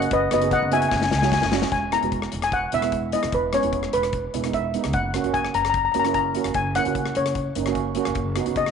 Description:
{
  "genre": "calypso",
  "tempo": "149 BPM",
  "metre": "4/4",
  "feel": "straight",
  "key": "unclear",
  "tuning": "A4 = 439 Hz",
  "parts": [
    { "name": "steel pan", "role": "accompaniment", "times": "0.0-8.7 s", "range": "G#3 to G#4", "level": "-27 LUFS", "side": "right 11 dB", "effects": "none" },
    { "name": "upright bass", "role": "bass", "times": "0.0-8.7 s", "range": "E1 to C#2", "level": "-28 LUFS", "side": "equal", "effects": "none" },
    { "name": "big rock drum kit", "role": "drums", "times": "0.0-8.7 s", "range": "hi-hat, kick drum, rim click, snare drum", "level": "-30 LUFS", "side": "left 5 dB", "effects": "none" },
    { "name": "steel pan", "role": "melody", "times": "0.1-8.7 s", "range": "B4 to A#5", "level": "-22 LUFS", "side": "left 3 dB", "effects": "none" }
  ],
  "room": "moderate spring reverb, RT60 2.0 s",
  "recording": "1960s-style stereo, nothing above 10.8 kHz",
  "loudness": "-20 LUFS",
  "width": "side -6 dB against mid",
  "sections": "0.0-1.7 A section; 1.7-8.7 B section",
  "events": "drum fill 0.9-1.7",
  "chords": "0.1 B/F#; 0.9 F#sus2; 1.7 E; 4.9 F#; 8.2 B/F#"
}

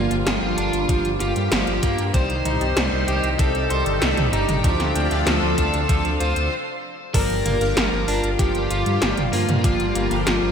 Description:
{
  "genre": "synthwave",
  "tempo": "96 BPM",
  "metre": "4/4",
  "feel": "straight",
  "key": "G minor",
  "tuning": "A4 = 440 Hz",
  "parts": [
    { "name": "bluesy overdriven lead guitar", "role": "melody", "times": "0.0-10.5 s", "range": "F4 to C5", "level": "-26 LUFS", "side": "left 2 dB", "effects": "distortion, ping-pong delay" },
    { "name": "phased analog pad", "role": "sustained chords", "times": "0.0-10.5 s", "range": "C3 to G4", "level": "-27 LUFS", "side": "right 1 dB", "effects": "phaser, chorus, sidechain pumping" },
    { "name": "electric guitar at the edge of break-up", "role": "arpeggios", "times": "0.0-10.5 s", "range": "F3 to C5", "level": "-28 LUFS", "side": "right 2 dB", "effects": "vintage 12-bit sampler grit, low-pass filter, digital delay" },
    { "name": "chorused polysynth", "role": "stabs", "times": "0.0-10.5 s", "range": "Bb3 to F5", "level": "-29 LUFS", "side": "left 1 dB", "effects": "phaser, digital delay" },
    { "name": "dark detuned saw bass", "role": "bass", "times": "0.0-10.5 s", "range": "G1 to G2", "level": "-25 LUFS", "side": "equal", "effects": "none" },
    { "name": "80s electronic pad drums", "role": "drums", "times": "0.1-10.4 s", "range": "crash cymbal, hi-hat, snare drum, toms", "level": "-25 LUFS", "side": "equal", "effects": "gated reverb on snare and toms" },
    { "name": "electronic kick drum", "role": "drums", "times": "0.9-9.8 s", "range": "none", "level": "-21 LUFS", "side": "equal", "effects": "overdrive" },
    { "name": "FM electric piano with soft pad layer", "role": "second line", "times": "7.1-10.5 s", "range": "F4 to Bb4", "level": "-31 LUFS", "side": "left 1 dB", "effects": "none" }
  ],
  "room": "moderate lush hall reverb, RT60 2.2 s",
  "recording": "bright 1980s-style digital production",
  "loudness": "-18 LUFS",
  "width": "side -7 dB against mid",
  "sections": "0.0-7.1 A section; 7.1-10.5 B section",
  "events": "filter sweep on analog polysynth 0.0-7.1; stop 6.5-7.1",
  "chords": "0.0 Gm7; 2.1 Cm; 4.6 Dm7; 7.1 Gm7"
}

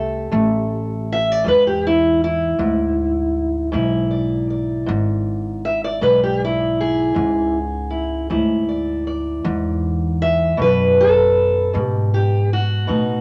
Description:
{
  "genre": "acoustic country blues, solo or duo",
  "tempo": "53 BPM (dotted quarters)",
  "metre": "12/8",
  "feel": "straight",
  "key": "E mixolydian",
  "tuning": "A4 = 440 Hz",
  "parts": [
    { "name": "fingerpicked steel-string acoustic guitar", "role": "melody", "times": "0.0-13.2 s", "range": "G#2 to E5", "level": "-20 LUFS", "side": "equal", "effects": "none" },
    { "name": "upright bass", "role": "bass", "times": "0.0-13.2 s", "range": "G#1 to A2", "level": "-24 LUFS", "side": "equal", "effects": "none" }
  ],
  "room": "moderate studio reverb, RT60 0.9 s",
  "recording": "none",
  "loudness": "-19 LUFS",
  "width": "mono",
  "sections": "0.0-13.2 A section",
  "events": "none",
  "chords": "0.0 Am7; 1.5 E7; 10.6 B7(no3)"
}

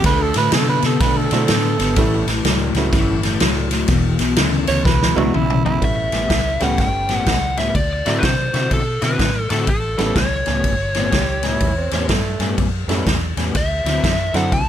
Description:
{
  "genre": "electric blues shuffle",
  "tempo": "124 BPM",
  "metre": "4/4",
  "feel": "swing 63% on 8ths",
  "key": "A mixolydian",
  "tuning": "A4 = 438 Hz",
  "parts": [
    { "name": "growling tenor saxophone", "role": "second line", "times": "0.0-5.8, 11.0-12.6 s", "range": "A3 to C#5", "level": "-22 LUFS", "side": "right 7 dB", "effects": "none" },
    { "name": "electric guitar at the edge of break-up", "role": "riff", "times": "0.0-14.6 s", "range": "E2 to F#4", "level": "-21 LUFS", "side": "left 3 dB", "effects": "ensemble chorus" },
    { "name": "vintage muted fingered electric bass", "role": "bass", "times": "0.0-14.7 s", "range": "E1 to C3", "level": "-23 LUFS", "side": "equal", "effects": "none" },
    { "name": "swinging big-band drum kit", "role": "drums", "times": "0.0-14.7 s", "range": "kick drum, ride cymbal, snare drum, toms", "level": "-20 LUFS", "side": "equal", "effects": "none" },
    { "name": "bright upright piano", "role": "accompaniment", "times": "1.3-14.5 s", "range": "F#3 to A4", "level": "-24 LUFS", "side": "right 6 dB", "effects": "none" },
    { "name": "biting lead guitar", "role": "melody", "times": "5.8-14.7 s", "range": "A4 to A5", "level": "-22 LUFS", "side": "left 1 dB", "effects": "overdrive" }
  ],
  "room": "little or no reverb",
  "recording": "none",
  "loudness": "-16 LUFS",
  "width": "side -10 dB against mid",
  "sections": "0.0-5.8 A section; 5.8-14.7 B section",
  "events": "tenor saxophone solo 0.0-5.8; drum fill 4.9-5.8",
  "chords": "0.0 D7(no3); 2.0 A9; 3.9 E7(no3); 5.8 A9; 7.7 D9; 9.7 A9; 13.5 D9"
}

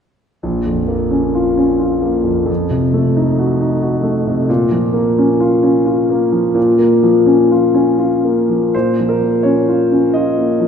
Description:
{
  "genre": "classical, romantic character piece for solo piano",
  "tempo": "77-93 BPM",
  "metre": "3/4",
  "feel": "rubato",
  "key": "Bb minor",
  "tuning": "A4 = 440 Hz",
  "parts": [
    { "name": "warm concert grand piano", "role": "solo", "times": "0.4-10.7 s", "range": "Bb1 to Eb5", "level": "-12 LUFS", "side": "equal", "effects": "none" }
  ],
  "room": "wet church reverb, RT60 2.6 s",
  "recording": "recorded in a church or concert hall",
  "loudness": "-12 LUFS",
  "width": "side -7 dB against mid",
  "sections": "0.4-8.7 A section; 8.7-10.7 B section",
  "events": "none",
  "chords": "0.4 Bbm; 2.5 F7b9; 4.5 Bbm"
}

